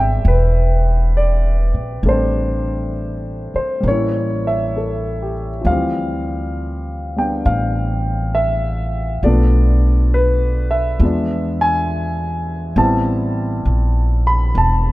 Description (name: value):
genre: jazz ballad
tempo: 67 BPM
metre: 4/4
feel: swing 67% on 8ths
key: A minor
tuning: A4 = 442 Hz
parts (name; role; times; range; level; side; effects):
- dark grand piano; accompaniment; 0.0-14.9 s; E3 to B5; -19 LUFS; equal; none
- upright bass; bass; 0.0-14.9 s; E1 to E2; -17 LUFS; equal; none
room: studio ambience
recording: rough home demo mix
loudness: -15 LUFS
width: side -18 dB against mid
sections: 0.0-5.7 A section; 5.7-14.9 B section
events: none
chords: 0.0 Am11; 3.8 A7b9; 5.7 Dm11; 9.2 Bm7b5; 11.0 E7b9; 12.8 Am9